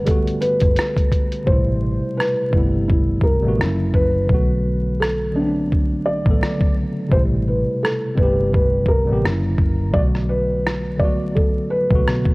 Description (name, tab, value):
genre	lo-fi hip hop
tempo	85 BPM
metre	4/4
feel	swing 56% on 16ths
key	A dorian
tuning	A4 = 440 Hz
part	felt-muted upright piano	melody	0.0-12.3 s	D4 to D5	-22 LUFS	equal	low-pass filter, tape echo
part	tine electric piano	accompaniment	0.0-12.3 s	B2 to F#5	-23 LUFS	equal	overdrive, fast stereo tremolo, low-pass filter
part	vintage muted fingered electric bass	bass	0.0-12.3 s	F#1 to B2	-23 LUFS	equal	tube saturation
part	lo-fi sampler-style drum kit	drums	0.1-12.3 s	hi-hat, kick drum, rim click	-19 LUFS	equal	vintage 12-bit sampler grit
room	little or no reverb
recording	worn, warbling old tape, cassette tape, vinyl crackle, warbly pitch drift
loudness	-16 LUFS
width	side -24 dB against mid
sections	0.0-1.5 A section; 1.5-12.3 B section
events	hi-hats muted 1.5-12.3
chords	0.0 Gmaj9; 1.5 Am9; 3.6 F#7b13; 4.3 Bm7; 7.1 Am9; 9.2 F#7b13; 9.9 Bm7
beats	0.06 0.76 | 1.47 2.17 2.88 3.59 | 4.29 5.00 5.70 6.41 | 7.12 7.82 8.53 9.23 | 9.94 10.64 11.35 12.06